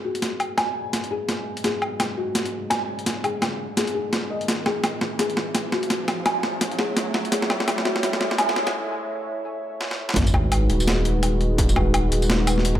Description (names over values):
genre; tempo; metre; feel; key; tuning
half-time drum and bass; 169 BPM; 4/4; swing 59% on 16ths, half-time; G# phrygian; A4 = 440 Hz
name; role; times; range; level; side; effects
dark analog pad; sustained chords; 0.0-12.8 s; G#3 to E5; -29 LUFS; equal; chorus, sidechain pumping
felt-muted upright piano; arpeggios; 0.0-10.2 s; F#4 to G#5; -27 LUFS; left 2 dB; low-pass filter, tape echo
riser and sub drop; sound effects; 1.3-11.6 s; none; -33 LUFS; equal; none
boom bap sampler-style drum kit; drums; 0.1-12.7 s; hi-hat, snare drum, tambourine, woodblock; -24 LUFS; equal; overdrive
saturated sub bass; bass; 10.2-12.8 s; D#1 to G#1; -22 LUFS; equal; none
electronic kick drum; drums; 10.2-12.8 s; none; -22 LUFS; equal; distortion
room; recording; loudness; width
moderate echo chamber reverb, RT60 1.5 s; high-pass filter; -21 LUFS; side -12 dB against mid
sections
0.0-10.2 A section; 10.2-12.8 B section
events
build-up 0.0-10.2; drum fill 0.0-8.7, 9.8-10.2; filter sweep on analog synth pad 0.0-10.2; filter sweep on felt piano 0.0-10.2; riser 1.3-8.7; break 8.7-10.2; drop 10.2-12.8; impact 10.2-11.6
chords
0.0 G#m7; 4.5 A; 10.2 G#m7